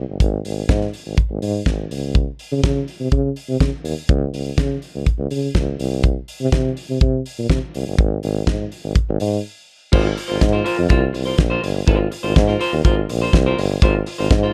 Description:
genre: disco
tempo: 123 BPM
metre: 4/4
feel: straight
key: Ab major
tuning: A4 = 438 Hz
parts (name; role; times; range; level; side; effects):
- warm tuba; bass; 0.0-14.5 s; G1 to Db3; -23 LUFS; equal; none
- damped 70s drum kit; drums; 0.2-14.4 s; crash cymbal, hi-hat, kick drum, snare drum; -21 LUFS; equal; none
- clean electric guitar; accompaniment; 9.9-14.5 s; F4 to C5; -25 LUFS; equal; none
room: small room ambience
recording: dark, warm production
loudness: -19 LUFS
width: mono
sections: 0.0-9.9 A section; 9.9-14.5 B section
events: break 9.4-9.9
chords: 0.0 N.C.; 5.8 C5; 8.0 N.C.; 9.9 Ab69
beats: | 0.20 0.69 1.18 1.66 | 2.15 2.63 3.12 3.61 | 4.09 4.58 5.07 5.55 | 6.04 6.53 7.01 7.50 | 7.99 8.47 8.96 9.45 | 9.93 10.42 10.90 11.39 | 11.88 12.36 12.85 13.33 | 13.82 14.30

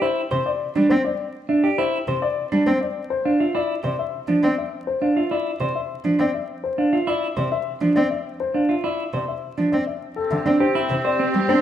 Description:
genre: classical, minimalist pattern music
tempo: 102 BPM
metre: 3/4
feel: straight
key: unclear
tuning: A4 = 441 Hz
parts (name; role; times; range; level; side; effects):
- dark baby grand piano; melody; 0.0-11.6 s; G4 to G5; -25 LUFS; left 6 dB; none
- clean electric guitar; arpeggios; 0.0-11.6 s; C4 to C5; -22 LUFS; right 2 dB; none
- warm cello; accompaniment; 0.3-11.6 s; C3 to C4; -26 LUFS; equal; none
- clear oboe; second line; 10.2-11.6 s; C4; -26 LUFS; right 4 dB; none
- rich studio string section; sustained chords; 10.2-11.6 s; C4 to G4; -29 LUFS; left 3 dB; none
room: moderate recital hall reverb, RT60 1.6 s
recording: minimal, uncompressed stereo recording, vinyl crackle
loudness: -19 LUFS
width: side -10 dB against mid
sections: 0.0-10.2 A section; 10.2-11.6 B section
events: none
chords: 0.0 C; 3.1 Dm7/C; 10.2 C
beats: 0.17 0.75 | 1.34 1.93 2.52 | 3.11 3.69 4.28 | 4.87 5.46 6.05 | 6.64 7.22 7.81 | 8.40 8.99 9.58 | 10.16 10.75 11.34

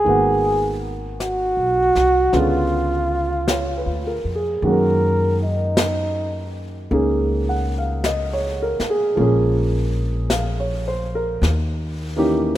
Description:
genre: jazz ballad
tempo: 53 BPM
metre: 4/4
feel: swing 66% on 8ths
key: F# major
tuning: A4 = 440 Hz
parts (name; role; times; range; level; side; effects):
- breathy flugelhorn; melody; 0.0-6.5 s; D#4 to A#4; -20 LUFS; right 1 dB; none
- warm grand piano; accompaniment; 0.0-12.6 s; D3 to F#5; -22 LUFS; right 1 dB; none
- upright bass; bass; 0.1-12.6 s; G#1 to F#2; -23 LUFS; equal; none
- jazz brush drum kit; drums; 0.1-12.6 s; brushed snare drum, hi-hat, snare drum; -24 LUFS; left 1 dB; none
room: light reverb, studio ambience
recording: rough home demo mix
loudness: -18 LUFS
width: side -13 dB against mid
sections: 0.0-4.6 A section; 4.6-12.6 B section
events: flugelhorn solo 4.6-12.6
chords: 0.1 G#m7; 2.3 C#7b9; 4.6 F#69; 9.2 A#m7; 11.4 D#7b9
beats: | 0.06 1.19 2.33 3.48 | 4.62 5.77 6.91 8.04 | 9.17 10.30 11.42 12.55

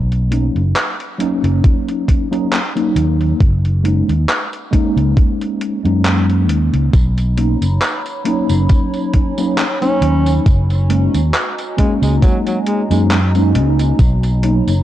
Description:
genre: vaporwave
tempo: 68 BPM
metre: 4/4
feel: swing 55% on 16ths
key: F# major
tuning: A4 = 439 Hz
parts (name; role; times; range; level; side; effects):
- fingered electric bass; bass; 0.0-14.8 s; F#1 to F#2; -14 LUFS; equal; none
- gated 80s digital drum machine; drums; 0.1-14.8 s; handclaps, hi-hat, tambourine; -22 LUFS; equal; gated reverb, overdrive, vintage 12-bit sampler grit
- mellow tine electric piano; accompaniment; 0.3-14.7 s; F#3 to D#4; -18 LUFS; equal; medium stereo tremolo, lush chorus, tape echo
- electronic kick drum; drums; 1.6-14.2 s; none; -13 LUFS; equal; overdrive, vintage 12-bit sampler grit
- warbly tape-like pad; sustained chords; 7.4-14.8 s; D#4 to B5; -27 LUFS; equal; chorus, built-in reverb, vintage 12-bit sampler grit
- warm alto saxophone; melody; 9.8-13.0 s; F#3 to C#4; -23 LUFS; right 1 dB; tape echo
room: digital ambience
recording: dark, warm production, cassette tape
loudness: -13 LUFS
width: side -13 dB against mid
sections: 0.0-14.8 A section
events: none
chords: 0.0 Bmaj9; 3.4 F#69; 6.9 Bmaj9; 10.5 F#69; 14.0 Bmaj9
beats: 0.76 1.64 2.52 | 3.40 4.29 5.17 6.05 | 6.93 7.82 8.70 9.58 | 10.46 11.35 12.23 13.11 | 13.99

